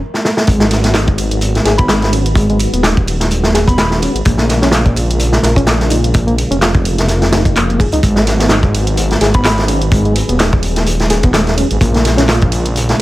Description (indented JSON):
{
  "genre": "breakbeat, breaks",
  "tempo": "127 BPM",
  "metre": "4/4",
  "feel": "swing 55% on 16ths",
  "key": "G# dorian",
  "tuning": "A4 = 440 Hz",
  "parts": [
    { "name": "vintage drum kit", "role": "drums", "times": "0.1-13.0 s", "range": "hi-hat, kick drum, snare drum", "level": "-14 LUFS", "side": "equal", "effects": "none" },
    { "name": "mellow tonewheel organ", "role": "sustained chords", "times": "0.5-13.0 s", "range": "C#3 to G#4", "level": "-21 LUFS", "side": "equal", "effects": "chorus vibrato, slow rotary speaker, vintage 12-bit sampler grit, sidechain pumping" },
    { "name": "reed electric piano", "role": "riff", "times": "0.5-13.0 s", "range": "G#3 to A#4", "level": "-18 LUFS", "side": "equal", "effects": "fast tremolo, tube saturation, vintage 12-bit sampler grit, dub echo" },
    { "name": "detuned saw bass", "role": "bass", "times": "0.5-12.9 s", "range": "D#1 to C#2", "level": "-15 LUFS", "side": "equal", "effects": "none" },
    { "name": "punchy analog drum machine", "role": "drums", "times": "0.5-13.0 s", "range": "handclaps, hi-hat, ride cymbal", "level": "-21 LUFS", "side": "right 1 dB", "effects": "none" },
    { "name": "soft synth bell", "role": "melody", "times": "1.8-3.9, 9.3-9.5 s", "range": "B5", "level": "-23 LUFS", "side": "left 1 dB", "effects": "chorus, telephone sound, dub echo" }
  ],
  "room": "little or no reverb",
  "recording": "none",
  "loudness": "-10 LUFS",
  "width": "side -17 dB against mid",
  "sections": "0.5-13.0 A section",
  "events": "stop 0.0-0.5; drum fill 0.1-0.5; drop 0.5-13.0",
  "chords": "0.5 G#m7; 4.3 A#m7; 8.0 G#m7; 11.8 A#m7",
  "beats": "0.00 | 0.48 0.95 1.42 1.89 | 2.37 2.84 3.31 3.78 | 4.25 4.73 5.20 5.67 | 6.14 6.62 7.09 7.56 | 8.04 8.51 8.98 9.45 | 9.93 10.40 10.87 11.34 | 11.81 12.29 12.76"
}